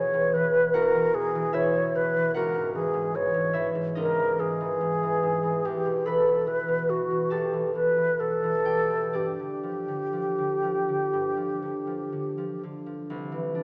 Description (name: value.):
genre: classical, impressionist duo for flute and harp.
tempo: 60-77 BPM.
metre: 4/4.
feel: rubato.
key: unclear.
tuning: A4 = 440 Hz.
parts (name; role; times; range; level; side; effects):
mellow silver concert flute; melody; 0.0-12.6 s; F#4 to Db5; -25 LUFS; equal; none.
concert harp; accompaniment; 0.0-13.6 s; C2 to B5; -27 LUFS; equal; none.
room: moderate scoring stage reverb, RT60 1.9 s.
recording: small speaker sound.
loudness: -23 LUFS.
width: side -36 dB against mid.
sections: 0.0-13.1 A section.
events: none.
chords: 0.0 E; 2.3 Dbmadd9; 5.6 Em; 9.1 Gsus2; 13.1 Cadd9.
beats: 0.74 1.54 | 2.34 3.14 3.96 4.80 | 5.64 6.47 7.31 8.19 | 9.14 10.13 11.12 12.12 | 13.09.